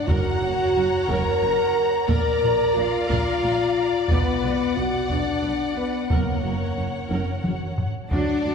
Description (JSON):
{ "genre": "cinematic, epic orchestral film score", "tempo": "60 BPM (dotted quarters)", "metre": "6/8", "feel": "straight", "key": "F# major", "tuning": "A4 = 441 Hz", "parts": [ { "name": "warm studio violin section", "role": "melody", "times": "0.0-8.5 s", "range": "A#4 to A#5", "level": "-32 LUFS", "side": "left 2 dB", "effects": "none" }, { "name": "warm symphonic violin section", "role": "second line", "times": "0.0-8.5 s", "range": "D5 to A#5", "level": "-30 LUFS", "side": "left 2 dB", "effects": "none" }, { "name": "warm studio viola section", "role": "accompaniment", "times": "0.0-8.5 s", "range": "F#3 to D5", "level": "-33 LUFS", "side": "equal", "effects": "none" }, { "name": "warm French horn section", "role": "sustained chords", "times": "0.0-7.1 s", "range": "A#3 to A#4", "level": "-23 LUFS", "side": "left 1 dB", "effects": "none" }, { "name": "bright studio double bass section", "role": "bass", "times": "0.1-8.5 s", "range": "F#1 to D2", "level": "-31 LUFS", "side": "right 2 dB", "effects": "none" }, { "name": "dark studio cello section", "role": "bass", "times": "0.1-8.5 s", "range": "F#2 to D4", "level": "-30 LUFS", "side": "right 2 dB", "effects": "none" }, { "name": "taiko ensemble", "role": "drums", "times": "0.1-8.5 s", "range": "none", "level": "-27 LUFS", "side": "right 1 dB", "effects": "none" }, { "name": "timpani", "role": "percussion", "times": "0.1-1.0, 6.1-7.1 s", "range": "F#2", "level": "-34 LUFS", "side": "equal", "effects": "none" } ], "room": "wet scoring stage reverb, RT60 2.1 s", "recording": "heard from further back in the room", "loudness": "-20 LUFS", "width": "side -6 dB against mid", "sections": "0.0-8.1 A section", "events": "drum fill 7.1-8.1", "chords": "0.1 F#; 2.1 A#; 4.1 Bm; 6.1 F#" }